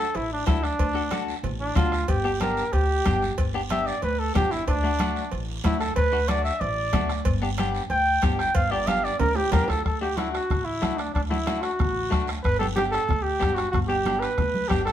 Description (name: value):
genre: latin, cumbia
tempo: 186 BPM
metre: 4/4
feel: straight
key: G major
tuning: A4 = 439 Hz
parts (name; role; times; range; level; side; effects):
- warm flugelhorn; melody; 0.0-14.9 s; D4 to G5; -25 LUFS; right 1 dB; none
- clean electric guitar; accompaniment; 0.0-14.9 s; A3 to A4; -31 LUFS; left 3 dB; none
- upright bass; bass; 0.0-14.9 s; G1 to E2; -29 LUFS; equal; none
- cowbell and timbales; percussion; 0.1-9.8 s; none; -36 LUFS; right 6 dB; none
- congas; percussion; 0.2-14.9 s; none; -32 LUFS; right 1 dB; none
- guiro; percussion; 0.2-14.9 s; none; -40 LUFS; right 5 dB; none
- bombo; percussion; 0.5-14.9 s; none; -28 LUFS; left 1 dB; none
room: moderate studio reverb, RT60 0.9 s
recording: band playing live in one room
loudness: -22 LUFS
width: side -10 dB against mid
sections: 0.0-9.9 A section; 9.9-14.9 B section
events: flugelhorn solo 0.0-9.9; drum fill 9.2-9.9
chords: 0.0 D; 2.1 G; 4.7 D; 7.3 G; 9.9 D; 12.4 G